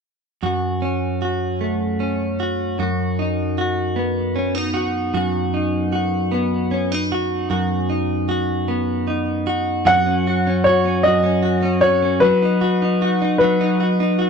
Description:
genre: pop.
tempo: 51 BPM (dotted quarters).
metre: 6/8.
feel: straight.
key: unclear.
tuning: A4 = 436 Hz.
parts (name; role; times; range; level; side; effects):
direct-recorded clean electric guitar; accompaniment; 0.4-14.3 s; F#2 to F#4; -18 LUFS; equal; double-tracked left and right.
clear baby grand piano; melody; 9.9-14.2 s; B4 to F#5; -18 LUFS; left 1 dB; none.
room: studio reverb.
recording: dry, close 1970s-style studio recording.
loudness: -17 LUFS.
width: side -6 dB against mid.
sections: 0.4-9.9 A section; 9.9-14.3 B section.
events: none.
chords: 0.4 F#m; 2.8 B/F#; 9.9 F#5; 12.2 B/F#.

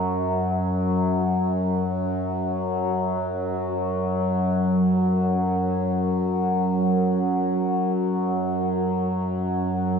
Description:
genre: ambient.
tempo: free time.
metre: none.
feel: none.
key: unclear.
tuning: A4 = 439 Hz.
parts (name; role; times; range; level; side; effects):
overtone-sweeping drone; solo; 0.0-10.0 s; F#2 to F#3; -21 LUFS; equal; chorus, built-in reverb, phaser, diffuse ambient delay.
room: wet huge ambient reverb, RT60 8.6 s.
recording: dark, warm production.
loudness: -21 LUFS.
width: side -6 dB against mid.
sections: 0.0-5.0 A section; 5.0-10.0 B section.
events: none.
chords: none.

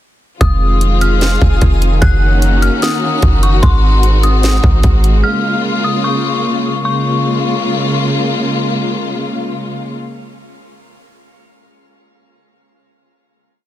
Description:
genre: hip hop, atmospheric cloud-rap.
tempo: 149 BPM.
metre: 4/4.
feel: half-time.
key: Bb minor.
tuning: A4 = 440 Hz.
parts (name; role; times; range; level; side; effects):
dark detuned synth bell; melody; 0.4-8.0 s; C6 to Gb6; -20 LUFS; left 3 dB; chorus, low-pass filter, ping-pong delay.
warm symphonic string section; sustained chords; 0.4-9.9 s; Db3 to Gb4; -16 LUFS; left 1 dB; sidechain pumping.
clean 808-style bass; bass; 0.4-5.2 s; F1 to Ab1; -11 LUFS; equal; none.
trap drum kit; drums; 0.4-5.1 s; hi-hat, kick drum, snare drum; -14 LUFS; equal; overdrive.
twinkling granular texture; texture; 0.6-3.6 s; Ab4 to Eb6; -28 LUFS; equal; built-in reverb.
room: little or no reverb.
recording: dense, heavily limited modern master.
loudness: -11 LUFS.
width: side -13 dB against mid.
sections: 0.4-6.8 verse; 6.8-10.1 final chord.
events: none.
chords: 0.4 Fm7; 2.0 Gb6; 3.6 Ab7; 5.2 Bbm7.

